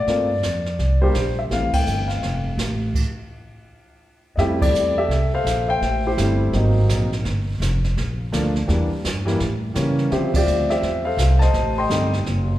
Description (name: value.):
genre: jazz piano trio.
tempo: 168 BPM.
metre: 4/4.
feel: swing 64% on 8ths.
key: F major.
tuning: A4 = 440 Hz.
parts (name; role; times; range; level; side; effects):
warm grand piano; melody; 0.0-12.6 s; E3 to C6; -22 LUFS; left 1 dB; none.
upright bass; bass; 0.0-12.6 s; F1 to D3; -21 LUFS; equal; none.
jazz brush drum kit; drums; 0.1-12.6 s; brushed snare drum, crash cymbal, hi-hat, kick drum, ride cymbal, snare drum; -28 LUFS; right 2 dB; none.
room: wet recital hall reverb, RT60 1.6 s.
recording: recorded in a church or concert hall.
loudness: -18 LUFS.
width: side -14 dB against mid.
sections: 0.0-4.4 A section; 4.4-12.6 B section.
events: band accent 1.7, 4.6, 10.3; stop 2.9-4.4.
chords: 0.1 Gm11; 0.8 C5; 1.5 Fmaj9; 5.8 Am7; 6.5 Ab9; 7.2 Gm7; 8.7 Em7b5; 9.4 A7b9; 10.1 Dm11; 11.5 Am7b5.